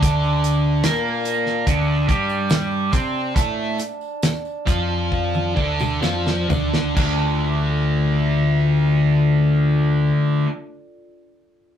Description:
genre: psychedelic rock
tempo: 63-74 BPM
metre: 4/4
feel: straight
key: D minor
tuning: A4 = 440 Hz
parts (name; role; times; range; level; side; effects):
- glass harmonica; sustained chords; 0.0-10.1 s; D4 to A5; -30 LUFS; right 3 dB; none
- fuzz guitar; riff; 0.0-10.5 s; D3 to C5; -20 LUFS; left 1 dB; distortion, phaser
- fuzz picked electric bass; bass; 0.0-10.1 s; D2 to C3; -23 LUFS; equal; overdrive
- damped 70s drum kit; drums; 0.0-7.2 s; crash cymbal, hi-hat, kick drum, snare drum, toms; -21 LUFS; equal; none
- tambourine; percussion; 0.2-7.4 s; none; -45 LUFS; right 4 dB; none
room: wet studio reverb, RT60 0.5 s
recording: rough rehearsal-room recording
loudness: -17 LUFS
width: side -9 dB against mid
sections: 0.0-7.0 A section; 7.0-10.8 B section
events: slowing down 0.0-7.0; drum fill 5.1-7.0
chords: 0.0 Dm

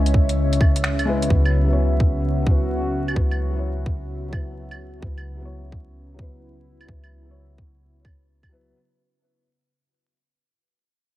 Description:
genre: future garage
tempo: 129 BPM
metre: 4/4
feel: swing 65% on 16ths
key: unclear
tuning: A4 = 441 Hz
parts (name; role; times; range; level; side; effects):
- felt-muted upright piano; accompaniment; 0.0-8.8 s; F#3 to C#5; -29 LUFS; left 2 dB; sidechain pumping, low-pass filter, tape echo
- warbly tape-like pad; sustained chords; 0.0-8.7 s; C#3 to E5; -26 LUFS; equal; chorus, built-in reverb, vintage 12-bit sampler grit, sidechain pumping
- soft 808-style bass; bass; 0.0-8.7 s; C#2; -24 LUFS; equal; tube saturation, sidechain pumping
- electronic kick drum; drums; 0.1-8.5 s; none; -20 LUFS; equal; none
- garage drum kit; drums; 0.1-8.5 s; claves, finger snaps, hi-hat; -28 LUFS; right 2 dB; none
room: light reverb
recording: vinyl crackle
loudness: -18 LUFS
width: side -15 dB against mid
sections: 0.0-8.7 A section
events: fade-out 0.0-8.7; filter sweep on felt piano 0.0-8.7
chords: 0.0 C#m7; 1.3 Esus2/C#

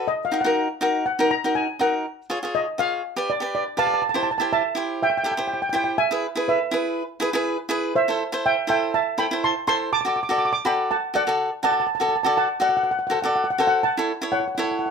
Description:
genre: calypso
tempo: 122 BPM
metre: 4/4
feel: swing 54% on 16ths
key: unclear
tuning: A4 = 444 Hz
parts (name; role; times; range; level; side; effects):
- steel pan; melody; 0.0-14.9 s; B4 to D6; -22 LUFS; right 2 dB; none
- cavaquinho; accompaniment; 0.0-14.9 s; D#4 to D5; -23 LUFS; left 1 dB; none
room: moderate studio reverb, RT60 0.5 s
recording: none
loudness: -20 LUFS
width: side -6 dB against mid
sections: 0.0-4.0 A section; 4.0-14.9 B section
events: steel pan solo 0.0-4.0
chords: 0.1 D#m; 2.0 C#; 3.0 G7; 4.0 C6; 6.0 E; 8.0 Am; 9.9 D; 13.8 A6

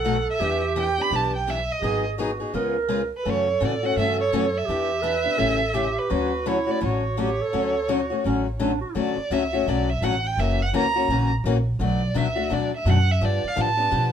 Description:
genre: acoustic string swing (jazz manouche)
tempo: 168 BPM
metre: 4/4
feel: swing 61% on 8ths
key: D major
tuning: A4 = 440 Hz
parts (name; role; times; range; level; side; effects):
- warm violin; melody; 0.0-14.1 s; B4 to B5; -25 LUFS; right 4 dB; none
- growling clarinet; second line; 0.0-8.9 s; C#4 to B4; -27 LUFS; right 5 dB; none
- picked steel-string acoustic guitar; accompaniment; 0.0-14.1 s; B2 to G#4; -26 LUFS; left 6 dB; none
- upright bass; bass; 0.0-14.1 s; F#1 to B2; -26 LUFS; equal; none
room: moderate studio reverb, RT60 0.5 s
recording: minimal, uncompressed stereo recording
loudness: -21 LUFS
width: side -8 dB against mid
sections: 0.0-9.0 A section; 9.0-14.1 B section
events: none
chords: 0.4 Em7; 1.8 G#m7; 2.5 C#7; 3.3 F#m7; 4.7 Em7; 5.4 A7; 6.1 Dmaj7; 10.4 F#7; 11.8 Bm7; 13.2 G9

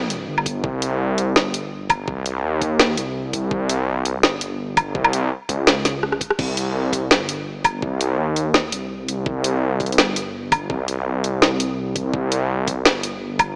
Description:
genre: half-time drum and bass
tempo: 167 BPM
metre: 4/4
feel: half-time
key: C phrygian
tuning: A4 = 440 Hz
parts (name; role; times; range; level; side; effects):
- dark detuned saw bass; bass; 0.0-13.6 s; G1 to Eb2; -25 LUFS; equal; none
- drum and bass drum kit; drums; 0.1-13.5 s; crash cymbal, hi-hat, rim click, snare drum, woodblock; -21 LUFS; equal; overdrive
- electronic kick drum; drums; 0.5-13.5 s; none; -30 LUFS; equal; overdrive
room: light reverb, digital ambience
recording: small speaker sound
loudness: -21 LUFS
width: mono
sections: 0.0-6.4 A section; 6.4-13.6 A section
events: drop 0.0-6.4, 6.4-13.6; drum fill 6.0-6.4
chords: none

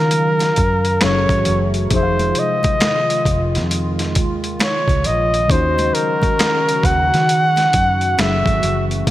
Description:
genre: R&B, neo-soul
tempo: 67 BPM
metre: 4/4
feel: swing 63% on 16ths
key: Eb dorian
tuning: A4 = 441 Hz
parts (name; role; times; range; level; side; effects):
- breathy flugelhorn; melody; 0.0-8.9 s; Bb4 to Gb5; -18 LUFS; equal; none
- mellow tine electric piano; accompaniment; 0.0-9.1 s; C3 to F5; -24 LUFS; left 3 dB; lush chorus
- hollow soft pad; sustained chords; 0.0-9.1 s; Db3 to F5; -26 LUFS; right 1 dB; chorus
- vintage muted fingered electric bass; bass; 0.0-9.1 s; F1 to Eb3; -20 LUFS; equal; none
- boom bap sampler-style drum kit; drums; 0.1-9.1 s; finger snaps, hi-hat, kick drum, snare drum; -20 LUFS; equal; none
- congas; percussion; 0.1-9.1 s; none; -32 LUFS; right 2 dB; none
room: moderate lush hall reverb, RT60 2.9 s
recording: bright 1980s-style digital production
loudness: -14 LUFS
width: side -14 dB against mid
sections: 0.0-9.1 A section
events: none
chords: 0.0 Ebm9; 1.0 Gbm7; 1.9 Fm7; 5.5 Ebm7; 8.2 Gbm7

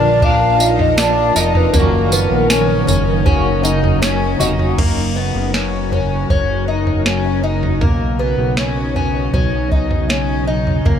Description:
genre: dream pop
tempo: 79 BPM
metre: 4/4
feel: straight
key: F# major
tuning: A4 = 440 Hz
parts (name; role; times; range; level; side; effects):
- warbly nostalgic lead; melody; 0.0-4.0 s; A#4 to E#5; -18 LUFS; left 2 dB; chorus, tape echo
- electric guitar at the edge of break-up; accompaniment; 0.0-4.8 s; F#2 to A#4; -22 LUFS; right 2 dB; tremolo, analog chorus
- ethereal airy pad; sustained chords; 0.0-11.0 s; B2 to A#4; -22 LUFS; equal; ensemble chorus, built-in reverb
- fingerpicked twelve-string acoustic guitar; arpeggios; 0.0-11.0 s; A#3 to D#4; -20 LUFS; left 2 dB; wide subtle chorus, tape echo
- fat analog bass; bass; 0.0-11.0 s; E#1 to B1; -20 LUFS; equal; none
- soft vintage rhythm box; drums; 0.2-11.0 s; crash cymbal, kick drum, snare drum, tambourine, toms; -18 LUFS; right 1 dB; none
room: moderate huge ambient reverb, RT60 6.1 s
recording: none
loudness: -13 LUFS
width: side -8 dB against mid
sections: 0.0-4.8 A section; 4.8-11.0 B section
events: none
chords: 0.0 A#; 1.7 F#6; 4.8 F#; 7.8 Badd9

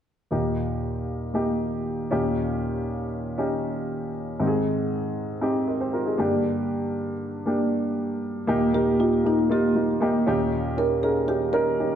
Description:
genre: pop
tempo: 118 BPM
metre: 4/4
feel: straight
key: Eb major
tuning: A4 = 444 Hz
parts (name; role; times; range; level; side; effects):
- warm upright piano; accompaniment; 0.3-12.0 s; Eb2 to Eb5; -23 LUFS; equal; none
- marimba with medium mallets; melody; 8.7-12.0 s; Eb4 to Bb4; -24 LUFS; right 2 dB; ping-pong delay
room: wet recital hall reverb, RT60 1.4 s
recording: dark, warm production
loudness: -22 LUFS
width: side -9 dB against mid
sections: 0.3-8.5 A section; 8.5-12.0 B section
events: none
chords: 0.3 Eb; 2.1 Eb7; 4.4 Ab; 6.2 Gm; 8.5 Eb; 10.3 Eb7

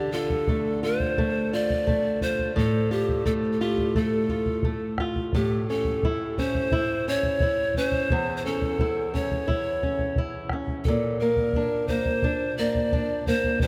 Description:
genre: andean folk, Andean ensemble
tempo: 87 BPM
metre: 4/4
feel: straight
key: unclear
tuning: A4 = 440 Hz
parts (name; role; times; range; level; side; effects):
- breathy pan flute; melody; 0.0-13.7 s; G4 to D5; -29 LUFS; equal; none
- flamenco guitar; accompaniment; 0.0-13.7 s; E2 to F4; -30 LUFS; equal; none
- bombo; percussion; 0.3-13.7 s; none; -32 LUFS; equal; none
room: wet cathedral reverb, RT60 6.5 s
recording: in a vast, echoing space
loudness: -25 LUFS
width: mono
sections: 0.0-13.7 A section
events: none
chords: 0.0 Dm; 5.3 A; 10.9 Bb

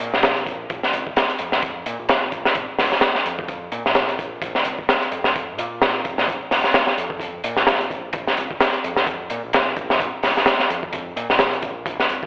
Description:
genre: breakbeat, breaks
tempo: 129 BPM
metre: 4/4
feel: swing 57% on 16ths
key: Bb minor pentatonic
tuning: A4 = 440 Hz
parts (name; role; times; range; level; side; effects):
- overdriven picked electric bass; bass; 0.0-12.2 s; F1 to Bb2; -31 LUFS; equal; none
- crunchy breakbeat drum kit; drums; 0.0-12.3 s; hi-hat, kick drum, snare drum; -18 LUFS; equal; none
room: moderate plate reverb, RT60 1.4 s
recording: played on a big sound system in a bare room, large studio reverb, telephone sound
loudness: -18 LUFS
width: side -30 dB against mid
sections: 0.0-12.3 A section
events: none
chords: none

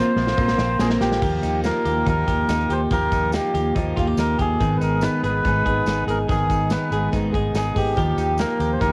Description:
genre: jangly indie pop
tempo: 142 BPM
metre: 4/4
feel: straight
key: Eb major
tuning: A4 = 443 Hz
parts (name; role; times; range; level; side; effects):
- melodica; melody; 0.0-8.9 s; G4 to C5; -26 LUFS; equal; cassette tape
- bright studio violin section; second line; 0.0-1.2 s; F4 to Bb4; -40 LUFS; equal; none
- picked steel-string acoustic guitar; accompaniment; 0.0-8.9 s; Ab2 to Bb4; -27 LUFS; equal; cassette tape
- direct-recorded clean electric guitar; arpeggios; 0.0-8.9 s; Eb3 to Ab4; -30 LUFS; equal; cassette tape
- vintage muted fingered electric bass; bass; 0.2-8.9 s; Ab1 to Eb2; -28 LUFS; equal; none
- modern studio drum kit; drums; 0.2-8.9 s; crash cymbal, hi-hat, kick drum, snare drum; -29 LUFS; equal; cassette tape
- tambourine; percussion; 0.2-8.9 s; none; -49 LUFS; equal; none
room: light reverb, studio ambience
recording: home recording on cassette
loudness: -21 LUFS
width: mono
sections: 0.0-1.2 A section; 1.2-8.9 B section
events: drum fill 0.0-1.2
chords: 0.0 Bbsus2; 1.2 Ebadd9; 4.6 Abm; 8.0 Ebadd9

